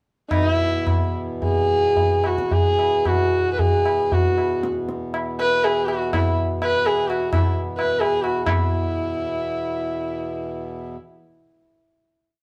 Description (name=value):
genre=indian classical, Hindustani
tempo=107-147 BPM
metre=4/4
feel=straight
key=E raga hamsadhwani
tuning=A4 = 437 Hz
part: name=dark sarangi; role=melody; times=0.3-10.9 s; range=E4 to B4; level=-23 LUFS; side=equal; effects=none
part: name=pedal harmonium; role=drone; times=0.3-11.0 s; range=E2 to B2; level=-33 LUFS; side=equal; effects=none
part: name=tabla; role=percussion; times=0.3-8.6 s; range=none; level=-25 LUFS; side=equal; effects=none
room=moderate stone room reverb, RT60 1.2 s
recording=band playing live in one room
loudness=-21 LUFS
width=mono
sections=0.3-8.5 theme; 8.5-10.2 final chord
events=speeding up 0.3-10.2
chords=none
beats=| 0.31 0.87 1.42 1.97 | 2.52 3.06 3.59 4.12 | 4.63 5.14 5.64 6.13 | 6.62 7.09 7.55 8.01 | 8.46 8.89 9.32 9.75